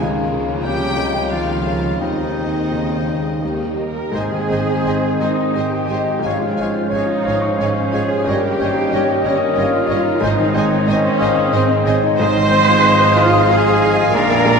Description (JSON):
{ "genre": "classical", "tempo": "82-96 BPM", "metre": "3/4", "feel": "rubato", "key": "Ab major", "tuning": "A4 = 440 Hz", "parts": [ { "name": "clear baby grand piano", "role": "melody", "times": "0.0-14.6 s", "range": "Bb1 to Eb6", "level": "-20 LUFS", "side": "left 1 dB", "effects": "none" }, { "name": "warm symphonic violin section", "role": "second line", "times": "0.0-14.6 s", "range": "Bb3 to F5", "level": "-31 LUFS", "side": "left 3 dB", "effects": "none" }, { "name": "mellow bassoon", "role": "accompaniment", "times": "0.0-14.6 s", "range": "G3 to F4", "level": "-28 LUFS", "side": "equal", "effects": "none" }, { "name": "warm symphonic viola section", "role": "accompaniment", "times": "0.0-14.6 s", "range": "Db3 to C5", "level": "-21 LUFS", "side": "right 1 dB", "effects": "none" }, { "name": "mellow French horn section", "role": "sustained chords", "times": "0.0-14.6 s", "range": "Ab3 to Ab4", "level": "-26 LUFS", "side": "left 2 dB", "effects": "none" }, { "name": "dark chamber double bass section", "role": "bass", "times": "0.0-14.6 s", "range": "G1 to Eb2", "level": "-26 LUFS", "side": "right 3 dB", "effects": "none" }, { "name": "warm symphonic violin section", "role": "melody", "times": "0.6-14.6 s", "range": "Eb5 to Ab5", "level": "-31 LUFS", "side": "left 4 dB", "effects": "none" }, { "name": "warm clarinet", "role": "second line", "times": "0.7-14.6 s", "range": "Eb4 to F5", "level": "-26 LUFS", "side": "left 2 dB", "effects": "none" }, { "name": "warm oboe", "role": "second line", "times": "0.7-14.6 s", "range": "Eb4 to Eb5", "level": "-29 LUFS", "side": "equal", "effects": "none" }, { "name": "warm symphonic cello section", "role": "bass", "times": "0.7-14.6 s", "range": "G2 to G3", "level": "-26 LUFS", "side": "right 2 dB", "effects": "none" }, { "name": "dark trumpet section", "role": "stabs", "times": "3.8-14.6 s", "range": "C5 to C6", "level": "-24 LUFS", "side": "right 2 dB", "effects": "none" }, { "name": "bright trombone section", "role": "sustained chords", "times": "4.1-14.6 s", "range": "G2 to F3", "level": "-27 LUFS", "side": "right 1 dB", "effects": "none" }, { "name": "concert flute", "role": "second line", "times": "4.2-14.6 s", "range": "Eb5 to F5", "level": "-29 LUFS", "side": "left 1 dB", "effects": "none" } ], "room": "wet church reverb, RT60 2.7 s", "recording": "none", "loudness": "-14 LUFS", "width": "side -5 dB against mid", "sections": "0.0-4.1 A section; 4.1-14.6 B section", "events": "none", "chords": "0.0 Bbm/Db; 2.0 Ab/Eb; 3.4 Eb; 4.1 Ab; 6.3 Db/Ab; 8.3 Eb7/G; 10.2 Ab; 12.2 Fm7/Ab" }